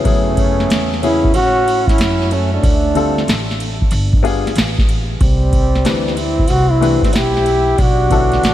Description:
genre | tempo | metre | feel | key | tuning
hip hop, jazz-hop | 93 BPM | 4/4 | swing 66% on 16ths | unclear | A4 = 439 Hz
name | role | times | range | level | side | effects
warm upright piano | accompaniment | 0.0-8.5 s | C#3 to B4 | -21 LUFS | left 6 dB | none
mellow trombone | melody | 0.1-8.5 s | C4 to G4 | -17 LUFS | equal | ping-pong delay
breathy tenor saxophone | second line | 0.1-8.5 s | G3 to E4 | -23 LUFS | right 6 dB | ping-pong delay
upright bass | bass | 0.1-8.5 s | G1 to A2 | -19 LUFS | equal | none
booming analog drum machine | drums | 0.1-8.5 s | hi-hat, kick drum, ride cymbal, snare drum | -16 LUFS | equal | none
room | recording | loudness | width
moderate lush hall reverb, RT60 3.0 s | dreamy mix soaked in reverb, vinyl crackle | -12 LUFS | side -13 dB against mid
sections
0.0-8.5 A section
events
none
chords
0.0 F#m7; 2.6 Dm7; 3.9 G7b9; 5.2 Cmaj7; 7.8 Bm7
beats
| 0.05 0.69 1.34 1.98 | 2.63 3.27 3.92 4.56 | 5.21 5.85 6.50 7.14 | 7.79 8.43

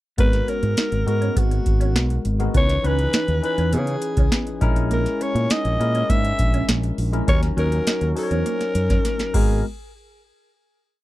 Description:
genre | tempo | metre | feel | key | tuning
polished 1980s jazz-funk pop | 102 BPM | 4/4 | straight | G# minor | A4 = 440 Hz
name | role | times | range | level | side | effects
raspy alto saxophone | melody | 0.2-9.6 s | F#4 to E5 | -25 LUFS | equal | none
barky tine electric piano | accompaniment | 0.2-9.7 s | E3 to C#5 | -27 LUFS | left 4 dB | overdrive, lush chorus
mellow electric guitar | riff | 0.2-9.5 s | G#3 to D#4 | -30 LUFS | right 4 dB | analog chorus
fingered electric bass | bass | 0.2-9.6 s | G#1 to C#3 | -22 LUFS | equal | none
booming analog drum machine | drums | 0.2-9.5 s | crash cymbal, hi-hat, kick drum, snare drum | -22 LUFS | equal | none
room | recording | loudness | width
little or no reverb | dry, close 1970s-style studio recording | -18 LUFS | side -16 dB against mid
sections
0.2-9.6 verse; 9.6-11.0 final hit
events
drum fill 9.0-9.6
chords
0.2 G#m9; 2.5 C#m9; 4.6 A#m7b5; 7.3 D#m7; 9.3 G#m9; 9.6 N.C.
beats
| 0.19 0.78 1.37 1.96 | 2.55 3.14 3.73 4.32 | 4.91 5.50 6.10 6.69 | 7.28 7.87 8.46 9.05 | 9.64

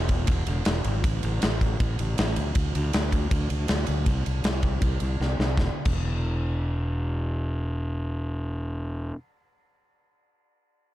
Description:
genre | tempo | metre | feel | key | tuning
heavy metal | 159 BPM | 4/4 | straight | unclear | A4 = 440 Hz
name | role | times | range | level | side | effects
fuzz fingered electric bass | bass | 0.0-9.1 s | E1 to D2 | -26 LUFS | equal | overdrive
big rock drum kit | drums | 0.1-6.0 s | crash cymbal, kick drum, ride cymbal, snare drum | -26 LUFS | equal | none
room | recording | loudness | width
little or no reverb | dark, warm production | -24 LUFS | side -14 dB against mid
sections
0.0-5.6 A section; 5.6-8.6 B section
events
drum fill 5.2-5.6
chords
none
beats
0.29 0.67 | 1.04 1.42 1.80 2.17 | 2.55 2.93 3.31 3.69 | 4.06 4.44 4.82 5.20 | 5.58 5.95 6.33 6.71 | 7.09 7.47 7.84 8.22

